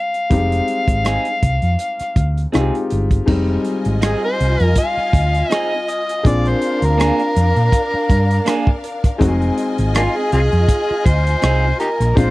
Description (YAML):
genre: lush 1970s-style soul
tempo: 81 BPM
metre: 4/4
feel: swing 54% on 16ths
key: F dorian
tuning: A4 = 440 Hz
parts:
  - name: overdriven harmonica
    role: melody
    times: 0.0-12.3 s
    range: Bb3 to F5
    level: -20 LUFS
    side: equal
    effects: none
  - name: clear grand piano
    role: accompaniment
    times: 0.0-12.3 s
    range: G3 to Ab4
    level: -22 LUFS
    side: left 2 dB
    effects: none
  - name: warm soul drum kit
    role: drums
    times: 0.1-12.3 s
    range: crash cymbal, hi-hat, kick drum, rim click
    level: -16 LUFS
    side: equal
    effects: none
  - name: hollow-body short-scale fingered electric bass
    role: bass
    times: 0.3-12.3 s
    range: F1 to Bb2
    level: -17 LUFS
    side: equal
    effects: none
  - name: clean electric guitar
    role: riff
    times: 1.0-11.7 s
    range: Bb3 to Ab4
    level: -22 LUFS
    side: right 4 dB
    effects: none
  - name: clear studio string section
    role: second line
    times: 3.3-12.3 s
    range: D4 to Bb5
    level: -24 LUFS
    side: left 2 dB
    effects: none
room: little or no reverb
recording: dry, close 1970s-style studio recording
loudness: -14 LUFS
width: side -19 dB against mid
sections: 0.0-3.3 A section; 3.3-12.3 B section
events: harmonica solo 3.3-12.3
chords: 0.0 Fm7; 6.2 Bb7; 9.2 Fm7